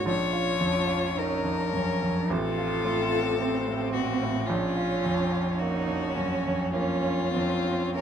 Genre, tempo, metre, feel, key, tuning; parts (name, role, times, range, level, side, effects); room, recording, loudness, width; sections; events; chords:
classical, slow romantic movement for piano quartet; 47-56 BPM; 4/4; rubato; A4 = 440 Hz
rich violin; melody; 0.0-8.0 s; F4 to Db5; -30 LUFS; left 8 dB
rich cello; second line; 0.0-8.0 s; C4 to F4; -32 LUFS; right 6 dB
clear concert grand piano; accompaniment; 0.0-8.0 s; A1 to F4; -28 LUFS; right 1 dB
warm viola; accompaniment; 0.0-8.0 s; C4 to Db4; -33 LUFS; right 2 dB
light reverb; -24 LUFS; side -8 dB against mid
0.0-8.0 A section
0.1 Bbm; 2.3 F/A; 4.5 Bbm